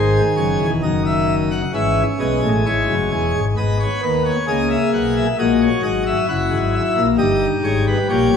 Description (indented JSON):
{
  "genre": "classical, baroque-style 4-part fugue for pipe organ",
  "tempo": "66 BPM",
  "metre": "4/4",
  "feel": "straight",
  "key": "unclear",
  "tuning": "A4 = 441 Hz",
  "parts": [
    { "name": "pipe organ, plenum", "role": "solo", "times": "0.0-8.4 s", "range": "E1 to F#5", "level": "-16 LUFS", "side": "left 1 dB", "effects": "none" }
  ],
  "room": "wet recital hall reverb, RT60 1.5 s",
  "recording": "none",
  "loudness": "-16 LUFS",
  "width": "side -7 dB against mid",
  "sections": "0.0-8.4 A section",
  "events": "none",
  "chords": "0.0 G#7; 1.7 C#m/G#; 3.6 G#m; 5.4 A#m7b5; 7.2 D#7/G"
}